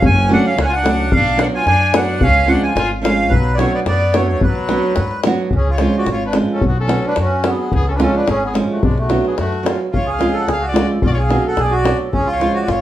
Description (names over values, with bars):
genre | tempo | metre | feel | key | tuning
balkan folk, Balkan wedding band | 109 BPM | 2/4 | straight | B dorian sharp4 | A4 = 440 Hz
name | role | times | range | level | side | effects
accordion | melody | 0.0-12.8 s | G#3 to G#5 | -19 LUFS | right 1 dB | tape echo
bright trumpet | second line | 0.0-12.8 s | F#3 to F#5 | -25 LUFS | left 3 dB | none
upright bass | bass | 0.0-12.8 s | F#1 to G#2 | -20 LUFS | equal | none
davul | percussion | 0.0-12.8 s | none | -20 LUFS | left 2 dB | none
nylon-string guitar | accompaniment | 0.3-12.6 s | E#3 to F#4 | -19 LUFS | right 2 dB | none
room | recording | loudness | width
wet studio reverb, RT60 0.6 s | heard from further back in the room | -14 LUFS | side -13 dB against mid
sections
0.0-5.5 A section; 5.5-12.8 B section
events
none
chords
0.0 F#m; 1.1 Bm; 2.2 C#; 3.3 Bm; 5.5 C#; 6.6 Bm; 7.7 C#; 8.8 Bm; 9.9 C#; 11.0 Bm; 12.1 C#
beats
| 0.02 0.57 | 1.12 1.67 | 2.22 2.77 | 3.32 3.87 | 4.42 4.97 | 5.52 6.07 | 6.62 7.17 | 7.72 8.27 | 8.82 9.38 | 9.93 10.48 | 11.03 11.58 | 12.13 12.68